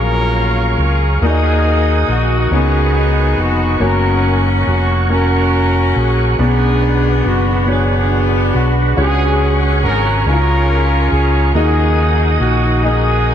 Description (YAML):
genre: gospel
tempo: 46 BPM (dotted quarters)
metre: 6/8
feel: straight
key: F# major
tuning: A4 = 440 Hz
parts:
  - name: mellow horn section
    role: melody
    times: 0.0-13.3 s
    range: A#3 to A#4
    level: -17 LUFS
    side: equal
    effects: ping-pong delay
  - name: clear concert grand piano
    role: accompaniment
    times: 0.0-13.3 s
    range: B2 to E#5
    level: -20 LUFS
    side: left 2 dB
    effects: wide subtle chorus
  - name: tonewheel organ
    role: sustained chords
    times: 0.0-13.3 s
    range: D4 to D#6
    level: -21 LUFS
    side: right 2 dB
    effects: fast rotary speaker, chorus vibrato
  - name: fingered electric bass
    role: bass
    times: 0.0-13.3 s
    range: E#1 to D#2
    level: -15 LUFS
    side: equal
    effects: none
room: moderate huge ambient reverb, RT60 7.9 s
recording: dreamy mix soaked in reverb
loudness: -12 LUFS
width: side -9 dB against mid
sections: 0.0-1.2 A section; 1.2-13.3 B section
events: none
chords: 0.0 F#maj7; 1.2 D#m; 2.5 C#9sus4; 3.8 F#; 6.4 Bm; 9.0 C#sus4; 10.3 C#; 11.5 D#m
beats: | 1.22 2.52 | 3.81 5.10 | 6.39 7.68 | 8.97 10.26 | 11.55 12.84